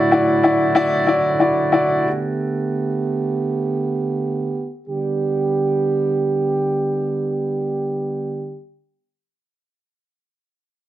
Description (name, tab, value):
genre	pop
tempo	81-94 BPM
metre	4/4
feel	straight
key	G major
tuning	A4 = 440 Hz
part	clear concert grand piano	accompaniment	0.0-2.1 s	A2 to D5	-15 LUFS	left 2 dB	none
part	mellow brass ensemble	sustained chords	0.0-8.6 s	A2 to G4	-20 LUFS	right 3 dB	none
room	light reverb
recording	heavily compressed radio sound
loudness	-18 LUFS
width	side -13 dB against mid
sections	0.0-4.9 A section; 4.9-7.8 B section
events	slowing down 0.0-4.9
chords	0.0 Dadd9/A; 2.1 Gadd9; 4.9 G